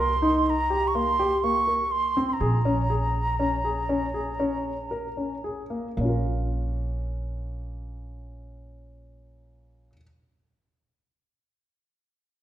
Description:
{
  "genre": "contemporary instrumental, chamber music in an uneven meter",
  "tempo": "110-124 BPM",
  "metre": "7/4",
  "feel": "straight",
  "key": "Bb minor",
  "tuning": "A4 = 441 Hz",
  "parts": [
    { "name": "wooden flute", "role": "melody", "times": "0.0-5.4 s", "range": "Bb5 to Db6", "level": "-26 LUFS", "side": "right 2 dB", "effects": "none" },
    { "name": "dark grand piano", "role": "arpeggios", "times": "0.0-10.0 s", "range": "Bb3 to Bb4", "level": "-28 LUFS", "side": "left 2 dB", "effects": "none" },
    { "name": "upright bass", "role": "bass", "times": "0.0-9.9 s", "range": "Bb1 to C2", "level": "-29 LUFS", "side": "right 1 dB", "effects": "none" }
  ],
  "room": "wet recital hall reverb, RT60 1.8 s",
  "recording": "minimal, uncompressed stereo recording",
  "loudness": "-23 LUFS",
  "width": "side -12 dB against mid",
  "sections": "0.0-6.0 A section; 6.0-9.8 B section",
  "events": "slowing down 1.9-6.0",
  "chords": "0.0 Cm7; 2.4 Bbm7; 6.0 Bbm",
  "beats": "0.46 0.95 1.43 1.92 | 2.40 2.89 3.39 3.89 4.39 4.91 5.43 | 5.97 6.51 7.06 7.60 8.14 8.68 9.23"
}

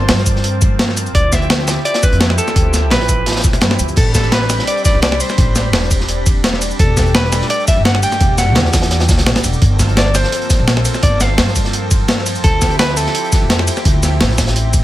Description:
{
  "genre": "liquid drum and bass",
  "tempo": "170 BPM",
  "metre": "4/4",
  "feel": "swing 53% on 16ths",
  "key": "unclear",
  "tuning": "A4 = 440 Hz",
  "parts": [
    { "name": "clean electric guitar", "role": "melody", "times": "0.0-14.8 s", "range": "A4 to G5", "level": "-20 LUFS", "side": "equal", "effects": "dub echo" },
    { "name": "lush unison pad", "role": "sustained chords", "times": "0.0-14.8 s", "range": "F3 to B5", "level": "-23 LUFS", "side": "equal", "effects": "chorus, sidechain pumping" },
    { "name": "upright bass", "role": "bass", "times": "0.0-14.8 s", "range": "E1 to G2", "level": "-17 LUFS", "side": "equal", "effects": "none" },
    { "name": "breakbeat sampler-style drum kit", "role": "drums", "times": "0.1-14.8 s", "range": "cabasa, crash cymbal, hi-hat, ride cymbal, snare drum", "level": "-17 LUFS", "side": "equal", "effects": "none" },
    { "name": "crunchy breakbeat drum kit", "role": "drums", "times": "0.1-14.8 s", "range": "hi-hat, snare drum", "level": "-23 LUFS", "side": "equal", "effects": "high-pass filter on hats, high-pass filter on snare, high-pass filter on room" },
    { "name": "electronic kick drum", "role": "drums", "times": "0.3-14.8 s", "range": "none", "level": "-14 LUFS", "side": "equal", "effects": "none" }
  ],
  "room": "studio ambience",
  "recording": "none",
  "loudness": "-11 LUFS",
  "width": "side -14 dB against mid",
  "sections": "0.0-14.8 A section",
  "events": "none",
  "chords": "0.0 Gm11; 1.1 Dm11; 4.0 Am11; 6.8 Em11; 9.6 Gm11; 12.4 Dm11",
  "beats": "0.09 0.44 0.79 | 1.15 1.50 1.85 2.21 | 2.56 2.91 3.27 3.62 | 3.97 4.32 4.68 5.03 | 5.38 5.74 6.09 6.44 | 6.79 7.15 7.50 7.85 | 8.21 8.56 8.91 9.27 | 9.62 9.97 10.32 10.68 | 11.03 11.38 11.73 12.09 | 12.44 12.79 13.15 13.50 | 13.85 14.21 14.56"
}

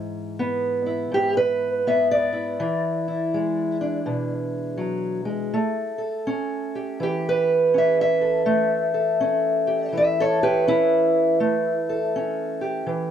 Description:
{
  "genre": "acoustic country blues, solo or duo",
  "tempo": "82 BPM",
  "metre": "4/4",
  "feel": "swing 63% on 8ths",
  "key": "unclear",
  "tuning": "A4 = 440 Hz",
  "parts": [
    { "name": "fingerpicked steel-string acoustic guitar", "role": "solo", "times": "0.0-13.1 s", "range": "G#2 to E5", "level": "-20 LUFS", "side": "equal", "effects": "none" }
  ],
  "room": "little or no reverb",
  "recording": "close, detailed microphones",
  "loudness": "-20 LUFS",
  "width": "side -9 dB against mid",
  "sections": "0.0-13.1 A section",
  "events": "none",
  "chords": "0.0 E7; 5.5 A7",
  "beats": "0.39 1.13 1.86 | 2.60 3.33 4.06 4.80 | 5.53 6.27 7.00 7.74 | 8.47 9.21 9.94 10.68 | 11.41 12.14 12.88"
}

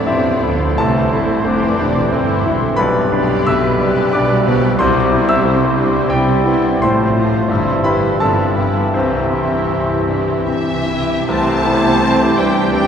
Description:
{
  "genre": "classical, romantic movement for piano and orchestra",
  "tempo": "70-94 BPM",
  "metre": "3/4",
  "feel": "rubato",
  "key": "C major",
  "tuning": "A4 = 440 Hz",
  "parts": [
    { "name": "bright grand piano", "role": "melody", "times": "0.0-12.9 s", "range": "A1 to E6", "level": "-17 LUFS", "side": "left 2 dB", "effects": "none" },
    { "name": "rich studio violin section", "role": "melody", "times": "0.0-12.9 s", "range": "G4 to A5", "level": "-28 LUFS", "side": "left 2 dB", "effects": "none" },
    { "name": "rich studio violin section", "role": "second line", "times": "0.0-12.9 s", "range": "D4 to A5", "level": "-27 LUFS", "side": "left 2 dB", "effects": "none" },
    { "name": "warm clarinet", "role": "second line", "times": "0.0-12.9 s", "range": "D4 to C5", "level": "-25 LUFS", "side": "equal", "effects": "none" },
    { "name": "warm oboe", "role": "second line", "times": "0.0-12.9 s", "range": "B4 to E5", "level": "-26 LUFS", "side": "right 1 dB", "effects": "none" },
    { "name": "warm bassoon", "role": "accompaniment", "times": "0.0-12.9 s", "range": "D3 to B3", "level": "-24 LUFS", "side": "right 1 dB", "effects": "none" },
    { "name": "warm chamber viola section", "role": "accompaniment", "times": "0.0-12.9 s", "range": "E3 to G4", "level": "-24 LUFS", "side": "right 2 dB", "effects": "none" },
    { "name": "mellow French horn section", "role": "sustained chords", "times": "0.0-12.9 s", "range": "E3 to C4", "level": "-24 LUFS", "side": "left 1 dB", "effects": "none" },
    { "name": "warm chamber cello section", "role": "bass", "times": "0.0-12.9 s", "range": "C2 to F3", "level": "-25 LUFS", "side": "right 2 dB", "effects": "none" },
    { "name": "warm chamber double bass section", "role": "bass", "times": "0.0-12.9 s", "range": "E1 to F2", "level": "-23 LUFS", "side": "right 2 dB", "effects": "none" },
    { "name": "mellow small flute group", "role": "second line", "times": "0.1-12.9 s", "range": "G4 to D6", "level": "-27 LUFS", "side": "left 2 dB", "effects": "none" },
    { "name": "clear trombone section", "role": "sustained chords", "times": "11.3-12.9 s", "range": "E3 to C4", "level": "-26 LUFS", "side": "right 3 dB", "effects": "none" },
    { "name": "warm trumpet", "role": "stabs", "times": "11.3-12.9 s", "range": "G4", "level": "-23 LUFS", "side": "right 2 dB", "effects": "none" }
  ],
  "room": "wet cathedral reverb, RT60 5.2 s",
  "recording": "heard from further back in the room",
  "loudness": "-13 LUFS",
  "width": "side -8 dB against mid",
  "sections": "0.0-11.3 A section; 11.3-12.9 A section",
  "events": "none",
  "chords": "0.0 Am; 2.8 G/B; 4.8 C; 6.8 F/A; 7.5 C/G; 8.2 G13; 8.9 C",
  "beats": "0.07 | 0.79 1.46 2.12 | 2.78 3.47 4.13 | 4.79 5.44 6.10 | 6.83 7.50 8.20 | 8.94 9.70 10.48 | 11.29 12.03 12.73"
}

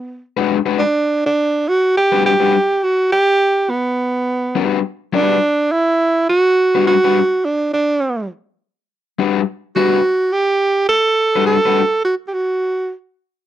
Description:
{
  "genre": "funk",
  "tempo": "104 BPM",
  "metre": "4/4",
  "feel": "swing 56% on 16ths",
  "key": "unclear",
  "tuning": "A4 = 443 Hz",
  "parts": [
    { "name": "breathy tenor saxophone", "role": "melody", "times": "0.0-12.9 s", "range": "B3 to A4", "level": "-14 LUFS", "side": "right 2 dB", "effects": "none" },
    { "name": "raw garage guitar", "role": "accompaniment", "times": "0.4-11.8 s", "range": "G3 to B4", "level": "-17 LUFS", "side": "left 9 dB", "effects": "overdrive" }
  ],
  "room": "light reverb",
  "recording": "dry, close 1970s-style studio recording",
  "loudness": "-14 LUFS",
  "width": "side -12 dB against mid",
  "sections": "0.8-13.5 A section",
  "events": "none",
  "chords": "0.0 E9 (rootless); 0.8 Gmaj7",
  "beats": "0.22 | 0.80 1.38 1.95 2.53 | 3.11 3.69 4.27 4.84 | 5.42 6.00 6.58 7.16 | 7.73 8.31 8.89 9.47 | 10.05 10.62 11.20 11.78 | 12.36"
}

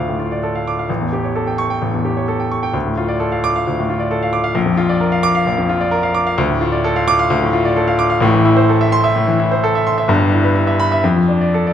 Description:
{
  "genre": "classical, virtuoso piano study",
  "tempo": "130 BPM",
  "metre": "4/4",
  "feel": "rubato",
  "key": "D minor, A minor from 6.4 s",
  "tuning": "A4 = 440 Hz",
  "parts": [
    { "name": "clear baby grand piano", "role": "solo", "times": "0.0-11.7 s", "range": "G1 to D6", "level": "-14 LUFS", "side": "equal", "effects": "none" }
  ],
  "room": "moderate recital hall reverb, RT60 1.7 s",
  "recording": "close, detailed microphones",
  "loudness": "-14 LUFS",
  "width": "side -9 dB against mid",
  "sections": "0.0-11.7 A section",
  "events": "none",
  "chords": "0.0 Dm; 0.9 A7; 2.7 Dm; 4.6 Bb; 6.4 Dm; 8.2 Am; 10.1 Em/G; 11.0 Dm/F",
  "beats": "0.42 | 0.89 1.35 1.82 2.29 | 2.75 3.21 3.67 4.11 | 4.56 5.02 5.47 5.93 | 6.38 6.85 7.30 7.76 | 8.22 8.69 9.16 9.63 | 10.09 10.55 11.02 11.52"
}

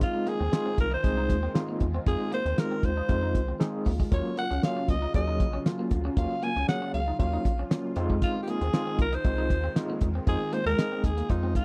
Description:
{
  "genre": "early-eighties boogie funk",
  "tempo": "117 BPM",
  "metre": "4/4",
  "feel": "straight",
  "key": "unclear",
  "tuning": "A4 = 441 Hz",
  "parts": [
    { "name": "growling alto saxophone", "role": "melody", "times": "0.0-11.6 s", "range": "Eb4 to Ab5", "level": "-33 LUFS", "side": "equal", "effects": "slapback echo" },
    { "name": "overdriven tine electric piano", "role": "accompaniment", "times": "0.0-11.6 s", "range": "Gb3 to Ab4", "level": "-34 LUFS", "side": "equal", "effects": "medium tremolo" },
    { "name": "lush unison pad", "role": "sustained chords", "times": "0.0-11.6 s", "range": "Db3 to F4", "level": "-41 LUFS", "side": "equal", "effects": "chorus, phaser" },
    { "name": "rubbery square bass", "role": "bass", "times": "0.0-11.6 s", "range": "Bb1 to F2", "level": "-32 LUFS", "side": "equal", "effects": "none" },
    { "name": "damped 70s drum kit", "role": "drums", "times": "0.0-11.6 s", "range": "hi-hat, kick drum, snare drum", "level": "-29 LUFS", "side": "equal", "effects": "none" },
    { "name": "clean electric guitar", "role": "riff", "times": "0.1-11.6 s", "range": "Ab3 to Eb4", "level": "-40 LUFS", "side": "equal", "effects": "lush chorus" }
  ],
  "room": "little or no reverb",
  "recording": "dry, close 1970s-style studio recording",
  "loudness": "-27 LUFS",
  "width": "mono",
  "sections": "0.0-11.6 A section",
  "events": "none",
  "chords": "0.0 Fm7; 4.1 Ebm9; 8.0 Fm7",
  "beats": "| 0.01 0.53 1.04 1.55 | 2.07 2.58 3.09 3.60 | 4.12 4.63 5.14 5.66 | 6.17 6.68 7.19 7.71 | 8.22 8.73 9.25 9.76 | 10.27 10.78 11.30"
}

